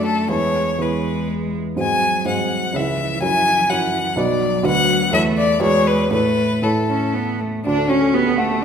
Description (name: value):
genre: quick classical-period movement for piano trio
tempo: 117-127 BPM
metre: 3/4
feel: rubato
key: A major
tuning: A4 = 439 Hz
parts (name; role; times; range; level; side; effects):
- clear violin; melody; 0.0-8.6 s; A3 to G#5; -20 LUFS; left 3 dB; none
- rich cello; second line; 0.0-8.6 s; E3 to D4; -22 LUFS; right 2 dB; none
- warm baby grand piano; accompaniment; 0.0-8.6 s; B1 to F#5; -21 LUFS; right 2 dB; none
room: wet recital hall reverb, RT60 1.5 s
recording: recorded in a church or concert hall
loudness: -16 LUFS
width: side -7 dB against mid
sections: 0.0-7.7 A section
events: none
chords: 0.3 E; 1.8 G#7; 2.8 C#m; 3.2 F#7; 4.2 Bm; 4.7 Bm/D; 5.1 A/E; 5.6 E9; 6.1 A; 7.7 D